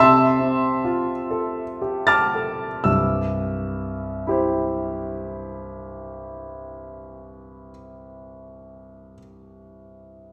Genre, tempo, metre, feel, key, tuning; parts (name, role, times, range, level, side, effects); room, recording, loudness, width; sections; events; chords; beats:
classical, impressionist solo piano; 37-51 BPM; 4/4; rubato; C major; A4 = 439 Hz
warm grand piano; solo; 0.0-10.3 s; C2 to A6; -22 LUFS; equal
wet recital hall reverb, RT60 1.8 s; heard from further back in the room; -23 LUFS; mono
0.0-2.9 A section; 2.9-8.5 B section
slowing down 0.0-2.9
0.0 Fadd9/C; 2.9 C
1.31 | 2.85 4.28 5.69 7.12